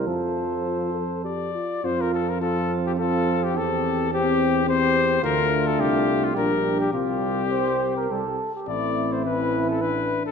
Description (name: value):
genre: classical, brass quintet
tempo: 105 BPM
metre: 3/4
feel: rubato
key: F major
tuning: A4 = 440 Hz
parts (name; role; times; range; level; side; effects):
- mellow trumpet; melody; 0.0-10.3 s; F4 to D5; -25 LUFS; left 7 dB; none
- mellow flugelhorn; second line; 0.0-10.2 s; E4 to C5; -29 LUFS; right 5 dB; none
- dark French horn; accompaniment; 0.0-10.3 s; C4 to A4; -28 LUFS; left 4 dB; none
- warm euphonium; accompaniment; 0.0-10.3 s; E3 to C4; -30 LUFS; right 4 dB; none
- warm tuba; bass; 0.0-10.3 s; A1 to F2; -28 LUFS; right 3 dB; none
room: moderate scoring stage reverb, RT60 1.8 s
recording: minimal, uncompressed stereo recording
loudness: -21 LUFS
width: side -6 dB against mid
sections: 0.0-1.8 A section; 1.8-10.3 B section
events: none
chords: 0.1 F; 1.8 F5; 3.6 C/E; 5.2 Dm; 6.4 Gm/Bb; 6.9 Csus4; 8.7 Am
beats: | 0.07 0.66 1.25 | 1.84 2.42 2.99 | 3.56 4.12 4.68 | 5.23 5.79 6.36 | 6.93 7.52 8.10 | 8.68 9.25 9.82